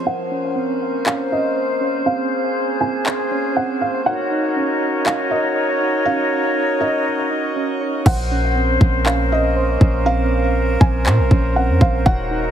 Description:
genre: hip hop, atmospheric cloud-rap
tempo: 120 BPM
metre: 4/4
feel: half-time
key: Bb minor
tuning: A4 = 440 Hz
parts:
  - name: soft electric-piano-like synth keys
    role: arpeggios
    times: 0.0-12.5 s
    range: C4 to Db5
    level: -24 LUFS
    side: right 5 dB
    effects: chorus, tremolo, low-pass filter, ping-pong delay
  - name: drifting glass-harmonics texture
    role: texture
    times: 0.0-12.5 s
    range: Gb3 to Eb5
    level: -28 LUFS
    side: right 1 dB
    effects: chorus, built-in reverb
  - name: felt-muted upright piano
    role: melody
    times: 0.1-12.5 s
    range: Eb5 to Ab5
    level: -24 LUFS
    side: right 1 dB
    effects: low-pass filter, ping-pong delay
  - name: small flute group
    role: sustained chords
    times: 0.1-12.5 s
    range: Eb4 to Db5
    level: -22 LUFS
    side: left 2 dB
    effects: sidechain pumping, low-pass filter
  - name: trap drum kit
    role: drums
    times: 1.1-12.2 s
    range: crash cymbal, handclaps, kick drum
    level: -17 LUFS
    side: equal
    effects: none
  - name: clean 808-style bass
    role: bass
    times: 8.1-12.5 s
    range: Eb1 to Bb2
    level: -18 LUFS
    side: equal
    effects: none
room: little or no reverb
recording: heavily compressed radio sound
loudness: -16 LUFS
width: side -10 dB against mid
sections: 0.1-8.1 A section; 8.1-12.5 B section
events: filter sweep 0.1-8.1; hi-hats muted 8.1-12.5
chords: 0.1 Bbmadd9; 4.1 Ebm7; 8.1 Bbmadd9

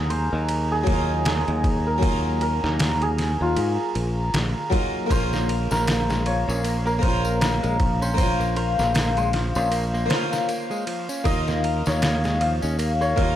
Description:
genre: trip hop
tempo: 78 BPM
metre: 4/4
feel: swing 57% on 16ths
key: Bb minor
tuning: A4 = 440 Hz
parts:
  - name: santur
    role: melody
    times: 0.0-13.4 s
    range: F4 to F5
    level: -28 LUFS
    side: equal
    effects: tape echo
  - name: harpsichord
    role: accompaniment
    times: 0.0-13.4 s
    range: Gb3 to C5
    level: -29 LUFS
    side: left 1 dB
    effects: harmonic tremolo, vintage 12-bit sampler grit
  - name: dark analog pad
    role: sustained chords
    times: 0.0-13.4 s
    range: F5 to Bb5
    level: -29 LUFS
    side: left 3 dB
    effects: chorus, phaser
  - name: fingered electric bass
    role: bass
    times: 0.0-13.4 s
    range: Bb1 to Ab2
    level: -24 LUFS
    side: equal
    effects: none
  - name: trip hop sampler-style drum kit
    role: drums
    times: 0.1-13.4 s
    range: kick drum, ride cymbal, snare drum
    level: -27 LUFS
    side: equal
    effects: none
  - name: direct-recorded clean electric guitar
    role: arpeggios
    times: 5.1-13.4 s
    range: F3 to Bb4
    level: -31 LUFS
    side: right 3 dB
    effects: vintage 12-bit sampler grit, tape echo
  - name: tambourine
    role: percussion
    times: 5.1-13.1 s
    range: none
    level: -39 LUFS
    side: left 4 dB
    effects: none
room: digital ambience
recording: dry, gritty hardware recording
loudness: -20 LUFS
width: side -11 dB against mid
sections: 0.0-13.4 A section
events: none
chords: 0.0 Ebmadd9; 5.1 Bbmadd9; 11.3 Ebsus2

